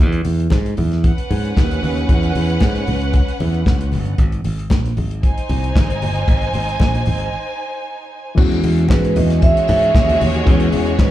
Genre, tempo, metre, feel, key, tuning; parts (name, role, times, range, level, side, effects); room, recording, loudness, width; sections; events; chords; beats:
disco; 114 BPM; 4/4; straight; A4 = 440 Hz
modern bright fingered electric bass; bass; 0.0-11.1 s; G1 to G#2; -18 LUFS; right 1 dB
warm soul drum kit; drums; 0.1-11.1 s; crash cymbal, handclaps, hi-hat, kick drum, snare drum; -17 LUFS; equal
congas; percussion; 0.2-11.1 s; -26 LUFS; left 3 dB
dark symphonic violin section; second line; 1.0-11.1 s; G#3 to Ab5; -24 LUFS; right 1 dB; slapback echo
reed electric piano; accompaniment; 8.3-11.1 s; E3 to G#4; -20 LUFS; left 4 dB
clear studio string section; sustained chords; 8.4-11.1 s; E3 to G#4; -29 LUFS; left 1 dB
vibraphone with medium hard mallets; melody; 8.9-11.1 s; B4 to E5; -17 LUFS; right 3 dB; slapback echo
small room reverb; live gig heard through the venue's PA, club ambience; -14 LUFS; side -13 dB against mid
0.0-8.4 A section; 8.4-11.1 B section
break 7.3-8.4
0.0 E69; 4.2 Ab; 8.4 E69
0.52 1.04 1.56 | 2.09 2.61 3.14 3.66 | 4.18 4.71 5.23 5.76 | 6.28 6.80 7.33 7.85 | 8.38 8.90 9.42 9.95 | 10.47 10.99